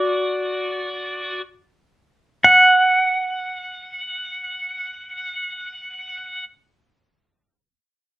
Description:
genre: hawaiian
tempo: free time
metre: none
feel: none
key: unclear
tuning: A4 = 438 Hz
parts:
  - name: pedal steel guitar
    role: solo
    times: 0.0-6.4 s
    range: F#4 to F#5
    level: -17 LUFS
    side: right 1 dB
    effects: none
room: moderate small room reverb, RT60 0.5 s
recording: worn, warbling old tape, cassette tape, warbly pitch drift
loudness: -17 LUFS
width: side -16 dB against mid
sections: 0.0-2.4 A section; 2.4-6.4 B section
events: slowing down 0.0-2.4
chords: none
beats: free time

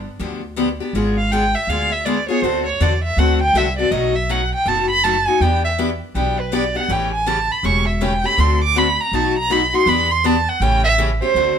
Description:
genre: acoustic string swing (jazz manouche)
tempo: 161 BPM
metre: 4/4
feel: swing 62% on 8ths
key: D mixolydian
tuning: A4 = 441 Hz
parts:
  - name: upright bass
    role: bass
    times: 0.0-11.6 s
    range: E1 to E2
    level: -21 LUFS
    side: equal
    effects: none
  - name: picked steel-string acoustic guitar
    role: accompaniment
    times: 0.2-11.6 s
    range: B2 to A4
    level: -21 LUFS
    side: left 4 dB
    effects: none
  - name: warm violin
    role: melody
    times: 1.2-11.6 s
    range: B4 to D6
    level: -18 LUFS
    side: right 3 dB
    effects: none
room: moderate studio reverb, RT60 1.0 s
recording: minimal, uncompressed stereo recording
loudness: -15 LUFS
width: side -8 dB against mid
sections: 0.0-11.4 A section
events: violin solo 0.0-11.4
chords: 0.0 G7; 0.9 G#dim7; 2.4 D7; 3.9 B7; 5.4 Em7; 6.9 A7; 8.4 D7; 9.1 B7; 9.9 Em7; 10.6 A7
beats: 0.19 0.57 | 0.94 1.31 1.68 2.06 | 2.43 2.80 3.17 3.54 | 3.92 4.29 4.66 5.03 | 5.40 5.78 6.15 6.52 | 6.89 7.26 7.63 8.01 | 8.38 8.75 9.12 9.49 | 9.87 10.24 10.61 10.98 | 11.35

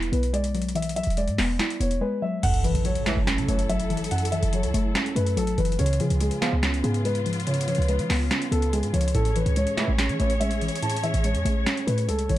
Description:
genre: hip hop, trap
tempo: 143 BPM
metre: 4/4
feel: half-time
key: F# minor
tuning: A4 = 439 Hz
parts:
  - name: dark concert grand piano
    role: melody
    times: 0.0-12.4 s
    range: G#4 to A5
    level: -30 LUFS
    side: left 1 dB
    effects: low-pass filter, ping-pong delay
  - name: warbly dusty pluck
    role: accompaniment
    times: 0.0-12.4 s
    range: F#2 to E4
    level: -28 LUFS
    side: left 1 dB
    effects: chorus, low-pass filter
  - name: short 808-style bass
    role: bass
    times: 0.0-12.4 s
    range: E1 to E#3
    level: -25 LUFS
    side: right 1 dB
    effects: none
  - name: booming analog drum machine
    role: drums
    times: 0.0-12.4 s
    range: crash cymbal, hi-hat, snare drum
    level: -30 LUFS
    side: equal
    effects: vintage 12-bit sampler grit
  - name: dark symphonic string section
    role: sustained chords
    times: 2.4-12.4 s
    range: C#3 to C#5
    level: -33 LUFS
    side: equal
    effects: none
  - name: impact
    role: sound effects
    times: 2.4-4.1 s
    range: none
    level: -31 LUFS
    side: right 1 dB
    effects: none
  - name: clear brass ensemble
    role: stabs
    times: 3.1-3.2, 6.4-6.6, 9.8-9.9 s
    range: C#2 to E#3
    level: -35 LUFS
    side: right 6 dB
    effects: ping-pong delay
room: studio reverb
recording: none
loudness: -22 LUFS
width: side -14 dB against mid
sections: 0.0-2.4 A section; 2.4-12.4 B section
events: drums muted 2.0-2.4; impact 2.4-4.1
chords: 0.0 Eadd9; 2.4 F#m7; 5.8 C#7; 9.1 Amaj7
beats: 0.34 | 0.76 1.17 1.59 2.01 | 2.43 2.85 3.27 3.69 | 4.11 4.53 4.95 5.37 | 5.79 6.21 6.63 7.05 | 7.47 7.89 8.31 8.73 | 9.15 9.57 9.98 10.40 | 10.82 11.24 11.66 12.08

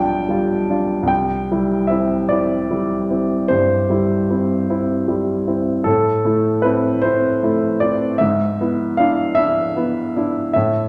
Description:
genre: classical, romantic nocturne for solo piano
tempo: 51 BPM (dotted quarters)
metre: 12/8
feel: rubato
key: C major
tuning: A4 = 439 Hz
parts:
  - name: warm upright piano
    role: solo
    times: 0.0-10.9 s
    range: B1 to A5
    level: -18 LUFS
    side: equal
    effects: none
room: wet recital hall reverb, RT60 1.2 s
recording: heard from further back in the room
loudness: -18 LUFS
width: mono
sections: 0.0-10.9 A section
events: none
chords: 0.0 G7/B; 1.1 C; 5.9 Am; 8.2 E7/G#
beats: | 1.09 2.30 3.50 4.68 | 5.86 7.03 8.20 9.37 | 10.55

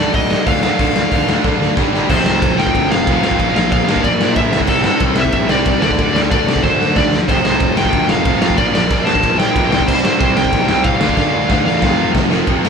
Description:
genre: punk rock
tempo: 185 BPM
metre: 4/4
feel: straight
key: F major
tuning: A4 = 441 Hz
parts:
  - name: smooth overdriven lead guitar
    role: melody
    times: 0.0-12.1 s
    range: A4 to A5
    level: -19 LUFS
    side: left 1 dB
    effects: none
  - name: sludgy distorted guitar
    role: riff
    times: 0.0-12.7 s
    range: F2 to D5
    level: -20 LUFS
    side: left 8 dB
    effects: overdrive
  - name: tight distorted guitar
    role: riff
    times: 0.0-12.7 s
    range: F2 to D4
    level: -20 LUFS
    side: right 8 dB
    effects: distortion
  - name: fuzz picked electric bass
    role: bass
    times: 0.0-12.7 s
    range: F1 to D3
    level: -21 LUFS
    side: equal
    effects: overdrive
  - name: raw garage drum kit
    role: drums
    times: 0.1-12.7 s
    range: crash cymbal, hi-hat, kick drum, ride cymbal, snare drum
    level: -17 LUFS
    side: equal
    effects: none
room: light reverb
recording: band playing live in one room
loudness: -12 LUFS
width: side -6 dB against mid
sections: 0.0-2.1 A section; 2.1-12.5 B section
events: drum fill 1.4-2.1, 6.6-7.3, 11.2-12.5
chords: 0.0 Dm; 1.8 G5; 2.1 F; 3.4 Bb; 4.5 C; 5.8 Dm; 7.3 F; 8.6 Bb; 9.7 C; 11.0 Dm; 11.8 F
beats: 0.14 0.46 | 0.79 1.11 1.44 1.77 | 2.09 2.42 2.74 3.07 | 3.39 3.72 4.04 4.37 | 4.69 5.01 5.34 5.66 | 5.99 6.31 6.64 6.96 | 7.28 7.61 7.93 8.26 | 8.58 8.90 9.23 9.55 | 9.88 10.20 10.52 10.85 | 11.17 11.49 11.82 12.14 | 12.47

